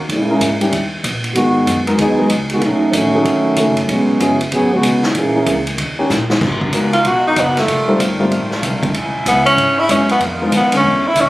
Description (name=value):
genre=jazz, big band swing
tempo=190 BPM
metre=4/4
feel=swing 64% on 8ths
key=G# minor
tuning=A4 = 440 Hz
part: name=upright bass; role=bass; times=0.0-11.3 s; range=E1 to A#2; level=-24 LUFS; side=equal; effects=none
part: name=clear trombone section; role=second line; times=0.1-5.6 s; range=C#3 to G#4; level=-15 LUFS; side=right 1 dB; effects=none
part: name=swinging big-band drum kit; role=drums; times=0.1-11.2 s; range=crash cymbal, hi-hat, kick drum, ride cymbal, snare drum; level=-20 LUFS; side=equal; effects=none
part: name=dark baby grand piano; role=accompaniment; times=0.3-10.8 s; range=D3 to C#5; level=-17 LUFS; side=left 1 dB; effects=none
part: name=clear saxophone section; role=sustained chords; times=6.4-11.3 s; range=B2 to F#4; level=-22 LUFS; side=equal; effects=none
part: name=breathy tenor saxophone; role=melody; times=6.9-11.3 s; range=A3 to F#4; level=-13 LUFS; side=equal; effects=none
room=moderate echo chamber reverb, RT60 1.4 s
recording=recorded on a phone in the room, club reverb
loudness=-13 LUFS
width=side -17 dB against mid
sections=0.0-6.4 A section; 6.4-11.3 B section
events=trombone section solo 0.0-6.4; drum fill 6.1-6.4; tenor saxophone solo 6.4-11.3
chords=0.1 A#m7b5; 0.7 D#5; 1.4 G#m7; 2.6 B13; 3.9 E69; 5.1 A#m7b5; 5.8 D#7; 6.4 G#m9; 7.7 F9; 8.9 E69; 10.2 Fm7b5